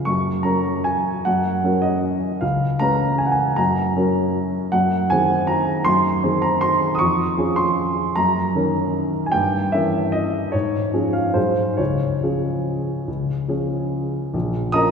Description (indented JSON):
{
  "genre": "classical, piano waltz",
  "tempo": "137-164 BPM",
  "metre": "3/4",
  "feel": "rubato",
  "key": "Db major",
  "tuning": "A4 = 441 Hz",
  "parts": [
    { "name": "warm baby grand piano", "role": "solo", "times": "0.0-14.9 s", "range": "Bb1 to Eb6", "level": "-18 LUFS", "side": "equal", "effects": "none" }
  ],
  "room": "wet church reverb, RT60 2.8 s",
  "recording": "minimal, uncompressed stereo recording",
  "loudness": "-18 LUFS",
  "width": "side -6 dB against mid",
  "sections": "0.0-14.3 A section",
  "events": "none",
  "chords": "0.1 Gb; 2.4 Db7; 3.6 Gb; 4.7 Ab7/Gb; 7.0 Db/F; 8.2 Ebm7/Gb; 9.3 Gdim7; 10.5 Db/Ab; 11.4 Ab7; 11.8 Db; 14.3 Bbm"
}